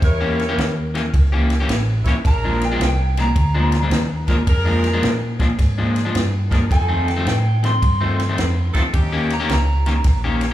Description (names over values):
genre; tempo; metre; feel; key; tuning
electric blues shuffle; 108 BPM; 4/4; swing 66% on 8ths; unclear; A4 = 440 Hz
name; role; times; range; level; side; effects
electric slide guitar; melody; 0.0-10.5 s; Bb4 to C6; -26 LUFS; right 1 dB; slapback echo, digital delay
bright horn section; stabs; 0.0-9.6 s; Db4 to C#5; -28 LUFS; right 2 dB; slapback echo
vintage muted fingered electric bass; bass; 0.0-10.5 s; A1 to Bb2; -19 LUFS; equal; none
compact cocktail drum kit; drums; 0.0-10.5 s; kick drum, ride cymbal, snare drum; -22 LUFS; equal; none
electric guitar at the edge of break-up; riff; 0.2-10.5 s; F2 to G4; -22 LUFS; left 2 dB; spring reverb, slapback echo
room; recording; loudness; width
small room reverb; live gig heard through the venue's PA, club reverb; -16 LUFS; side -13 dB against mid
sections
0.0-10.5 A section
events
electric slide guitar solo 0.0-10.5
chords
0.0 Edim7; 2.2 Bb7; 6.7 F7; 8.9 Eb7